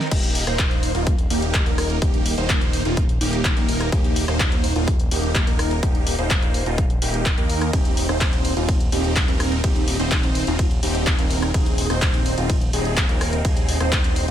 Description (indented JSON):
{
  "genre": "EDM, festival progressive house",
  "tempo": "126 BPM",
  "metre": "4/4",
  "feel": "straight",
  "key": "Eb major",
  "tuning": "A4 = 440 Hz",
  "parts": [
    { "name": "supersaw chords", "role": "riff", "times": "0.0-14.3 s", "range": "Bb3 to C5", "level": "-24 LUFS", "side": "right 1 dB", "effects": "phaser, vintage 12-bit sampler grit, sidechain pumping, low-pass filter, digital delay" },
    { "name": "big-room dance drum kit", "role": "drums", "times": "0.0-14.3 s", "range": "crash cymbal, handclaps, hi-hat, ride cymbal, rim click, snare drum", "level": "-26 LUFS", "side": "left 1 dB", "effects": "none" },
    { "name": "fat analog bass", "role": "bass", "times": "0.1-14.3 s", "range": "Eb1 to Eb2", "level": "-24 LUFS", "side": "equal", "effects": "sidechain pumping" },
    { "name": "electronic kick drum", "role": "drums", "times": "0.1-14.0 s", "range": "none", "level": "-20 LUFS", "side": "equal", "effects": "none" }
  ],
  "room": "digital ambience",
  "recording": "none",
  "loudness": "-18 LUFS",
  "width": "side -10 dB against mid",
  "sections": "0.1-14.3 A section",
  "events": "drop 0.1-14.3",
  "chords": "0.1 Eb; 11.5 Ab/Eb"
}